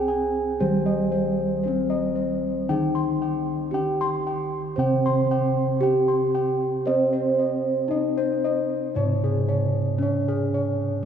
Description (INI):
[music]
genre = gamelan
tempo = 57 BPM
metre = 4/4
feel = straight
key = C pelog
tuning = A4 = 443 Hz
[part]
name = gamelan-type bronze metallophone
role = melody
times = 0.0-11.1 s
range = C4 to C5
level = -25 LUFS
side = right 1 dB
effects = none
[part]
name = gamelan-type bronze metallophone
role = accompaniment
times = 0.0-11.1 s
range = C3 to C4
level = -28 LUFS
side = right 3 dB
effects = none
[part]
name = gamelan-type bossed gongs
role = arpeggios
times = 0.0-10.8 s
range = Ab4-20c to C6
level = -28 LUFS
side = left 2 dB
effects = none
[part]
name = gamelan-type bossed gongs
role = bass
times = 0.0-11.1 s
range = C2 to C5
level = -28 LUFS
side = left 1 dB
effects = none
[sound]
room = wet cathedral reverb, RT60 4.8 s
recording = recorded in a church or concert hall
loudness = -21 LUFS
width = side -8 dB against mid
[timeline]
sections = 0.0-11.1 A section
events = none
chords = none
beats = 0.60 1.65 | 2.69 3.74 4.79 5.83 | 6.88 7.92 8.97 10.01